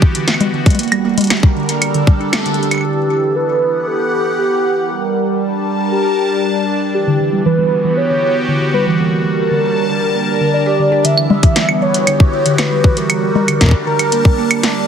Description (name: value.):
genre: IDM.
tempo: 117 BPM.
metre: 4/4.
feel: straight.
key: E dorian.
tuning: A4 = 440 Hz.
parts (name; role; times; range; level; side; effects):
phased analog pad; sustained chords; 0.0-14.9 s; E3 to A5; -18 LUFS; equal; phaser, chorus.
electronic kick drum; drums; 0.0-2.2, 11.4-14.4 s; none; -10 LUFS; left 1 dB; none.
harp-like synth pluck; arpeggios; 0.1-2.7, 7.1-14.7 s; D3 to G4; -18 LUFS; right 2 dB; chorus, tape echo.
electro analog drum machine; drums; 0.1-2.8, 11.0-14.7 s; claves, congas, hi-hat, snare drum; -16 LUFS; left 2 dB; ping-pong delay.
warm velvety synth lead; melody; 2.8-14.6 s; G4 to E5; -17 LUFS; equal; chorus, dub echo.
room: moderate plate reverb, RT60 1.7 s, digital ambience.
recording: heavily compressed radio sound, multiband compression.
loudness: -12 LUFS.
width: side -8 dB against mid.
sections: 0.0-2.8 A section; 2.8-11.0 B section; 11.0-14.9 C section.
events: kick drops out 2.3-2.8; band accent 2.3.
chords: 0.0 Em7; 0.8 Gm; 2.8 Em7; 4.9 Gm; 6.9 Em7; 9.0 Gm; 11.0 Em7; 13.1 Gm.